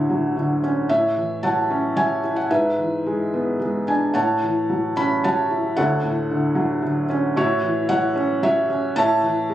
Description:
classical, lyrical solo piano; 112 BPM; 3/4; rubato; A major; A4 = 442 Hz
felt-muted upright piano; solo; 0.0-9.5 s; D2 to B5; -18 LUFS; equal
moderate recital hall reverb, RT60 1.7 s; recorded on a phone in the room, studio ambience, compression; -18 LUFS; side -13 dB against mid
0.0-9.5 A section
0.0 Dmaj9; 0.9 A6; 2.5 E7/G#; 4.1 A6; 5.8 Dmaj7; 7.4 A6; 9.0 A

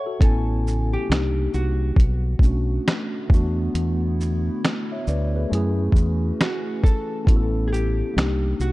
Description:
lo-fi hip hop; 68 BPM; 4/4; swing 65% on 16ths; A4 = 440 Hz
vintage hollow-body jazz guitar; melody; 0.0-8.7 s; F#4 to C#5; -30 LUFS; left 1 dB; analog delay
mellow tine electric piano; accompaniment; 0.0-8.7 s; A3 to G#5; -27 LUFS; left 1 dB; medium stereo tremolo, cassette tape
warbly tape-like pad; sustained chords; 0.9-8.7 s; C#3 to G#5; -35 LUFS; right 1 dB; chorus, built-in reverb
deep dub fingered electric bass; bass; 0.2-8.7 s; A1 to F#2; -22 LUFS; equal
lo-fi sampler-style drum kit; drums; 0.2-8.7 s; finger snaps, hi-hat, kick drum, shaker, snare drum; -18 LUFS; equal
little or no reverb; dark, warm production, low-pass filter; -19 LUFS; side -19 dB against mid
0.2-8.7 A section
0.2 Amaj9; 1.1 Cm7; 2.0 Bm7; 3.3 E7sus4; 5.5 F#m7; 7.3 Aadd9; 8.1 Cm7

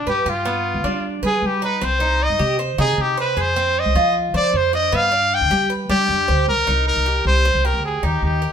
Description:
latin, Cuban son and guajira; 154 BPM; 4/4; straight; A4 = 440 Hz
brilliant trumpet; melody; 0.0-8.5 s; F4 to G5; -19 LUFS; left 1 dB
Cuban tres; arpeggios; 0.0-8.5 s; B3 to C5; -24 LUFS; right 4 dB
upright bass; bass; 0.0-8.5 s; C2 to G3; -22 LUFS; equal
moderate stone room reverb, RT60 1.0 s; band playing live in one room; -16 LUFS; side -8 dB against mid
0.0-6.5 A section; 6.5-8.5 B section
trumpet solo 0.0-6.5
0.0 G; 1.8 Cm; 3.4 F5; 4.9 G; 6.5 Cm7

